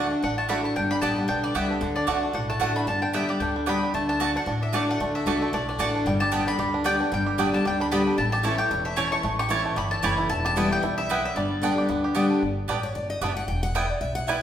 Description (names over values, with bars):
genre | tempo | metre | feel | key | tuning
bluegrass | 226 BPM | 4/4 | swing 55% on 8ths | G major, G lydian from 3.9 s | A4 = 440 Hz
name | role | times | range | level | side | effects
bluegrass banjo | melody | 0.0-14.4 s | D3 to G4 | -31 LUFS | right 3 dB | none
mandolin | melody | 0.0-12.1 s | C#5 to C#6 | -28 LUFS | left 2 dB | none
picked steel-string acoustic guitar | accompaniment | 0.0-14.4 s | E2 to G5 | -26 LUFS | left 1 dB | none
mandolin | stabs | 0.0-14.4 s | A3 to A5 | -30 LUFS | right 4 dB | none
upright bass | bass | 0.0-14.4 s | E1 to D2 | -32 LUFS | equal | none
room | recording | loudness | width
wet large studio reverb, RT60 1.3 s | band playing live in one room | -22 LUFS | side -10 dB against mid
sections
0.0-3.9 A section; 3.9-12.4 B section; 12.4-14.4 C section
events
steel-string acoustic guitar solo 12.4-14.4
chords
0.0 D; 0.8 G; 1.8 D; 2.9 G; 3.9 D; 6.1 G; 8.2 A; 10.3 Em; 11.4 G; 13.5 Em